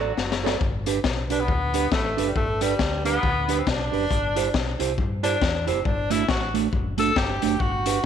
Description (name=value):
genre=ska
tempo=137 BPM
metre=4/4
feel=swing 59% on 8ths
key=G major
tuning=A4 = 440 Hz
part: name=mellow electric guitar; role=accompaniment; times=0.0-8.0 s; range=A3 to D5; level=-27 LUFS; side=right 12 dB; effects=spring reverb
part: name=deep dub fingered electric bass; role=bass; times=0.0-8.0 s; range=F#1 to G2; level=-29 LUFS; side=left 1 dB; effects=none
part: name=raw garage drum kit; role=drums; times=0.2-7.9 s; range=hi-hat, kick drum, snare drum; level=-26 LUFS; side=left 3 dB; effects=slapback echo
part: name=warm tenor saxophone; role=melody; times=1.3-8.1 s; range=G3 to A4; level=-26 LUFS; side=left 1 dB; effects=slapback echo
room=light reverb, studio reverb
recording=1960s-style stereo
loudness=-21 LUFS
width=side -8 dB against mid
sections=0.6-8.1 A section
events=drum fill 0.0-0.6; tenor saxophone solo 0.6-8.1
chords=0.0 D; 0.6 G; 4.1 C/G; 5.9 D/G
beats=0.17 | 0.61 1.04 1.48 1.92 | 2.36 2.79 3.23 3.67 | 4.11 4.54 4.98 5.42 | 5.85 6.29 6.73 7.17 | 7.60 8.04